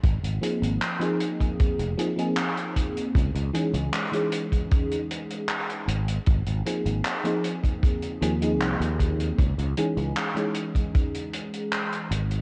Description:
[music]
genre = vaporwave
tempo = 77 BPM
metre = 4/4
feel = straight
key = unclear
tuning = A4 = 440 Hz
[part]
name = sustaining fretless electric bass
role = bass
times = 0.0-12.4 s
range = F1 to Eb2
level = -29 LUFS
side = equal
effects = none
[part]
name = kick drum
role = drums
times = 0.0-11.1 s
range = none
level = -26 LUFS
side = equal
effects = none
[part]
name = vintage drum kit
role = drums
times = 0.0-12.4 s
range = handclaps, hi-hat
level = -34 LUFS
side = equal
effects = gated reverb
[part]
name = FM electric piano with soft pad layer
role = accompaniment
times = 0.4-12.1 s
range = Fb3 to Ab4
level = -30 LUFS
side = equal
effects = analog chorus, tape echo
[sound]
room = light reverb, small room ambience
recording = cassette tape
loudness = -26 LUFS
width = mono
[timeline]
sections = 0.0-12.4 A section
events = none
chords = 0.0 Ab6; 3.2 Dbmadd9; 5.9 Ab6; 9.4 Dbmadd9

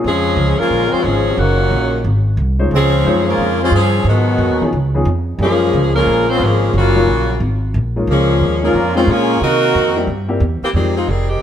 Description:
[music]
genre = jazz, big band swing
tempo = 179 BPM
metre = 4/4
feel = swing 64% on 8ths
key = unclear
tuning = A4 = 439 Hz
[part]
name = warm upright piano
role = accompaniment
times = 0.0, 2.6-10.9 s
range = F3 to C5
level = -21 LUFS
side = left 3 dB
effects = none
[part]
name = upright bass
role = bass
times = 0.0-11.4 s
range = F1 to C3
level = -17 LUFS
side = right 1 dB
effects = none
[part]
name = bright saxophone section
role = melody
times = 0.1-11.4 s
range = Db3 to Db5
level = -16 LUFS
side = left 2 dB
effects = none
[part]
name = brilliant trombone section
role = second line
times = 0.1-10.0 s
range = Bb2 to Ab4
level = -20 LUFS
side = right 1 dB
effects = none
[sound]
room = wet echo chamber reverb, RT60 1.5 s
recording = heard from further back in the room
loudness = -13 LUFS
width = side -9 dB against mid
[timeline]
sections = 0.0-10.8 A section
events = none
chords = 0.0 Bbm9; 1.4 Ebm7; 2.0 Ab; 2.7 Dbmaj7; 4.1 Abm7; 4.7 Db7; 5.4 Gbmaj9; 6.7 Ebm9; 7.4 Absus2; 8.1 Db6; 9.4 Cm7b5; 10.1 C7; 10.8 Fm9

